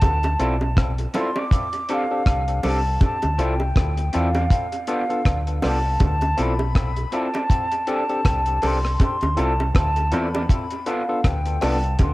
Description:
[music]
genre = lovers rock reggae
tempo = 80 BPM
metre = 4/4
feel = swing 58% on 16ths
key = D dorian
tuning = A4 = 441 Hz
[part]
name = breathy mellow jazz flute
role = melody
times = 0.0-12.1 s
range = F5 to D6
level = -25 LUFS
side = equal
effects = cassette tape, tape echo
[part]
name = deep dub fingered electric bass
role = bass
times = 0.0-12.1 s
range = B1 to E2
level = -23 LUFS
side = equal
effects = none
[part]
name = deep reggae drum kit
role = drums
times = 0.0-12.1 s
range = hi-hat, kick drum, rim click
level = -21 LUFS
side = equal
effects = cassette tape
[part]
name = bongos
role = percussion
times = 0.0-12.1 s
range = none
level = -31 LUFS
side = right 1 dB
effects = tape echo
[part]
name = barky tine electric piano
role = accompaniment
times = 0.4-11.8 s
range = B3 to A4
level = -28 LUFS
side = left 2 dB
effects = cassette tape, tape echo
[part]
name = electric guitar through a small old amp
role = stabs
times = 0.4-11.8 s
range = B3 to D5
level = -32 LUFS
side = right 2 dB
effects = cassette tape, tape echo
[sound]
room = light reverb, studio reverb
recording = home recording on cassette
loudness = -19 LUFS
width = side -19 dB against mid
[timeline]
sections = 0.0-12.1 A section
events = none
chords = 0.0 Dm7; 1.5 F6; 3.0 Dm7; 4.5 G7; 6.0 Dm7; 7.5 F6; 9.0 Dm7; 10.5 G9

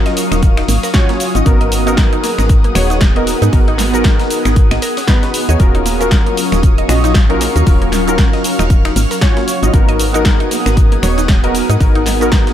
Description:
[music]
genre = deep house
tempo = 116 BPM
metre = 4/4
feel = swing 58% on 16ths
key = unclear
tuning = A4 = 440 Hz
[part]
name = airy breathy pad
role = sustained chords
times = 0.0-12.5 s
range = Gb3 to F6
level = -24 LUFS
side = left 1 dB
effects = chorus, phaser, sidechain pumping
[part]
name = warm analog keys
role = stabs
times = 0.0-12.5 s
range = Cb4 to Eb5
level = -18 LUFS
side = equal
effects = chorus, sidechain pumping, tape echo
[part]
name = ethereal airy pad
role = texture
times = 0.0-12.5 s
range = Gb3 to Gb5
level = -22 LUFS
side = equal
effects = ensemble chorus, built-in reverb, sidechain pumping
[part]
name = mallet-like synth pluck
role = arpeggios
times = 0.1-12.5 s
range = Bb3 to Eb5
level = -23 LUFS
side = right 2 dB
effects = chorus, phaser, sidechain pumping, ping-pong delay
[part]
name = breakbeat sampler-style drum kit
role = drums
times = 0.1-12.5 s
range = hi-hat, snare drum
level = -31 LUFS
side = left 1 dB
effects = none
[part]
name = punchy analog drum machine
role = drums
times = 0.1-12.5 s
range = finger snaps, hi-hat, shaker, snare drum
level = -20 LUFS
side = equal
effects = none
[part]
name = woody FM bass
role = bass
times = 0.3-12.4 s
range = Eb1 to Ab2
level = -16 LUFS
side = equal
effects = tube saturation, sidechain pumping
[part]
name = electronic kick drum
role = drums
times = 0.4-12.4 s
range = none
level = -11 LUFS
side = equal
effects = none
[sound]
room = digital ambience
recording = none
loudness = -10 LUFS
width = side -11 dB against mid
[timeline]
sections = 0.0-12.5 A section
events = none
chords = 0.0 Ebm9; 1.5 Abm7; 5.6 Ebm9; 9.7 Abm7

